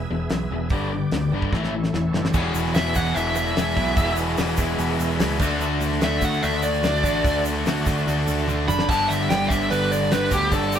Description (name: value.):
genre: classic rock.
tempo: 147 BPM.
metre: 4/4.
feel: straight.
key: unclear.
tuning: A4 = 440 Hz.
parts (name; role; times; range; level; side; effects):
bright tonewheel organ; sustained chords; 0.0-10.8 s; G#3 to E5; -34 LUFS; right 1 dB; slow rotary speaker, overdrive, chorus vibrato.
overdriven electric guitar; riff; 0.0-10.8 s; E2 to G#4; -27 LUFS; left 5 dB; none.
overdriven semi-hollow guitar; riff; 0.0-10.8 s; E2 to D4; -30 LUFS; right 7 dB; none.
picked electric bass; bass; 0.0-10.8 s; E1 to D2; -27 LUFS; equal; none.
damped 70s drum kit; drums; 0.3-10.8 s; crash cymbal, hi-hat, kick drum, snare drum, toms; -26 LUFS; equal; none.
cranked stack guitar; riff; 2.3-10.8 s; E2 to D4; -28 LUFS; right 1 dB; overdrive.
tube shaker; percussion; 2.3-10.8 s; none; -39 LUFS; right 9 dB; none.
dark smooth lead guitar; melody; 2.7-10.8 s; G4 to B5; -23 LUFS; equal; overdrive.
room: moderate studio reverb, RT60 0.5 s.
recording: band playing live in one room.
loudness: -20 LUFS.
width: side -9 dB against mid.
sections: 0.0-2.3 A section; 2.3-10.8 B section.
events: drum fill 1.5-2.3, 8.5-8.9; lead electric guitar solo 2.3-10.8.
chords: 0.0 E; 0.7 G; 1.5 A; 2.3 E; 5.4 D; 8.9 G.